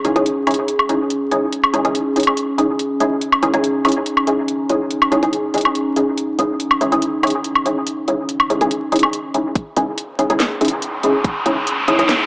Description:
deep dubstep; 142 BPM; 4/4; half-time; C# minor; A4 = 440 Hz
dark analog pad; sustained chords; 0.0-12.3 s; C#4 to G#4; -22 LUFS; equal; chorus, phaser
filtered dub chord stab; stabs; 0.0-12.1 s; C#4 to G#4; -18 LUFS; equal; ensemble chorus, dub echo
garage drum kit; drums; 0.0-12.2 s; hi-hat, snare drum, woodblock; -18 LUFS; equal
electronic kick drum; drums; 9.6-11.3 s; -18 LUFS; equal
riser; sound effects; 10.5-12.3 s; -21 LUFS; equal
wet spring reverb, RT60 2.1 s; vinyl crackle, small speaker sound; -15 LUFS; side -26 dB against mid
0.0-9.6 A section; 9.6-12.3 B section
build-up 9.6-12.3; riser 10.5-12.3
0.0 C#madd9

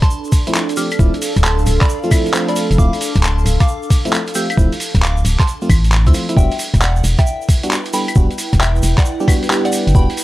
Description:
UK garage, two-step garage; 134 BPM; 4/4; swing 66% on 16ths; A4 = 439 Hz
soft synth bell; melody; 0.0-10.2 s; D5 to G6; -25 LUFS; equal; chorus, phaser
boom bap sampler-style drum kit; drums; 0.0-10.2 s; claves, handclaps, hi-hat, rim click; -21 LUFS; equal
electronic kick drum; drums; 0.0-10.1 s; -13 LUFS; equal
tube shaker; percussion; 0.0-10.2 s; -29 LUFS; right 2 dB
warbly tape-like pad; texture; 0.0-10.2 s; D4 to G5; -25 LUFS; right 2 dB; chorus, built-in reverb, phaser, sidechain pumping
FM electric piano; stabs; 0.5-10.1 s; F3 to A4; -21 LUFS; equal; chorus
organ-like FM bass; bass; 1.0-10.1 s; D1 to D2; -14 LUFS; equal; tube saturation
digital ambience; dry, gritty hardware recording, vinyl crackle; -13 LUFS; side -16 dB against mid
0.0-10.2 A section
0.0 Dm9; 6.4 Em9

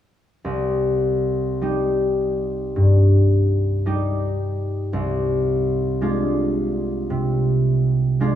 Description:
classical; 50-58 BPM (dotted quarters); 12/8; rubato; C minor; A4 = 440 Hz
concert harp; accompaniment; 0.4-8.4 s; C2 to G4; -18 LUFS; equal
wet concert hall reverb, RT60 2.4 s; small room ambience; -18 LUFS; side -10 dB against mid
0.4-8.4 A section
0.4 Cm; 4.9 Dm7b5/C

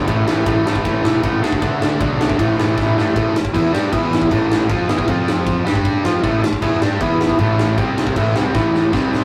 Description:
punk rock; 156 BPM; 4/4; straight; A minor; A4 = 441 Hz
cranked stack guitar; riff; 0.0-9.2 s; A2 to G4; -24 LUFS; equal; overdrive
distorted electric guitar; riff; 0.0-9.2 s; A2 to G4; -21 LUFS; equal; distortion
distorted electric guitar; riff; 0.0-3.2, 6.2-9.2 s; A2 to G4; -30 LUFS; equal
fuzz picked electric bass; bass; 0.0-9.2 s; E1 to G2; -27 LUFS; equal
big rock drum kit; drums; 0.1-9.2 s; crash cymbal, kick drum, ride cymbal, snare drum; -22 LUFS; equal
moderate booth ambience, RT60 0.2 s; rough rehearsal-room recording, tube saturation; -17 LUFS; mono
0.0-3.2 A section; 3.2-9.2 B section
drum fill 2.8-3.2, 8.5-9.2
0.1 Am; 1.4 D; 2.4 Am; 3.2 A5; 3.9 E5; 4.3 Am; 5.1 F5; 5.7 G5; 6.0 Am; 7.0 E5; 7.4 A5; 7.8 C5; 8.2 Am

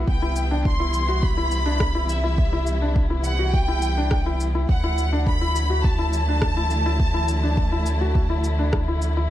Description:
piano and strings electronica; 104 BPM; 4/4; straight; A4 = 442 Hz
dark symphonic string section; sustained chords; 0.0-9.3 s; C3 to E4; -31 LUFS; left 1 dB; sidechain pumping
felt-muted upright piano; riff; 0.0-9.3 s; D4 to F#4; -28 LUFS; left 2 dB
warm sub bass; bass; 0.0-9.3 s; C2 to D2; -23 LUFS; equal; tube saturation, sidechain pumping
rich studio violin section; melody; 0.1-8.7 s; E5 to C6; -28 LUFS; equal
electronic kick drum; drums; 0.1-8.8 s; -22 LUFS; equal; overdrive
electronic shaker and rim click; drums; 0.4-9.1 s; -31 LUFS; left 1 dB; overdrive
small room ambience; dark, warm production; -19 LUFS; side -13 dB against mid
0.0-9.3 A section
0.1 Cmaj7; 4.7 Dadd9

